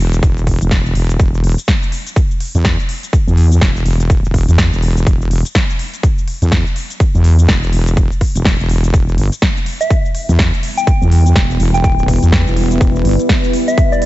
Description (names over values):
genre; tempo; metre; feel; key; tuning
bass house; 124 BPM; 4/4; swing 60% on 16ths; E minor; A4 = 443 Hz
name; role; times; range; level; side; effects
wobble bass; bass; 0.0-13.2 s; E1 to E2; -12 LUFS; equal; chorus, tube saturation, sidechain pumping
big-room dance drum kit; drums; 0.1-14.1 s; hi-hat, shaker, snare drum; -22 LUFS; equal; overdrive
electronic kick drum; drums; 0.2-13.9 s; none; -14 LUFS; equal; overdrive
deep dark ambient pad; sustained chords; 10.7-14.1 s; G3 to B4; -19 LUFS; equal; chorus, built-in reverb, sidechain pumping
soft synth bell; melody; 9.8-14.1 s; D5 to G5; -20 LUFS; equal; chorus, analog delay
room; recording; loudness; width
digital ambience; nothing above 7.9 kHz; -11 LUFS; side -17 dB against mid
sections
0.0-14.1 A section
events
none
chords
0.0 N.C.; 8.9 Em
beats
0.23 0.71 | 1.20 1.68 2.16 2.65 | 3.13 3.62 4.10 4.58 | 5.07 5.55 6.04 6.52 | 7.00 7.49 7.97 8.45 | 8.94 9.42 9.91 10.39 | 10.87 11.36 11.84 12.32 | 12.81 13.29 13.78